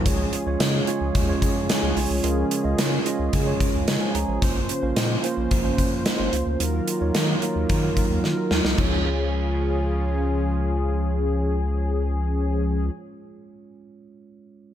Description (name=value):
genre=1980s-style pop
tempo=110 BPM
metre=4/4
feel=straight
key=Db major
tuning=A4 = 440 Hz
part: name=mellow tine electric piano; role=accompaniment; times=0.0-14.7 s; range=Gb3 to Bb5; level=-28 LUFS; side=right 5 dB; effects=none
part: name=brassy analog pad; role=sustained chords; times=0.0-12.9 s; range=Db3 to C5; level=-32 LUFS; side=left 1 dB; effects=chorus
part: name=mellow synth brass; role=stabs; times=0.1-12.9 s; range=F3 to C5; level=-29 LUFS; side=left 2 dB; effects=chorus
part: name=round analog bass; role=bass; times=0.1-12.9 s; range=Ab1 to Eb3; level=-25 LUFS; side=left 1 dB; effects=none
part: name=gated 80s drum kit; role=drums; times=0.1-8.9 s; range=crash cymbal, hi-hat, kick drum, snare drum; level=-24 LUFS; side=equal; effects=none
room=light reverb, studio ambience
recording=none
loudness=-20 LUFS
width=side -10 dB against mid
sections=0.1-8.8 A section; 8.8-13.1 B section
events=drum fill 8.2-8.8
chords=0.1 Db; 4.4 Bbmadd9; 6.6 Ebmadd9; 8.8 Db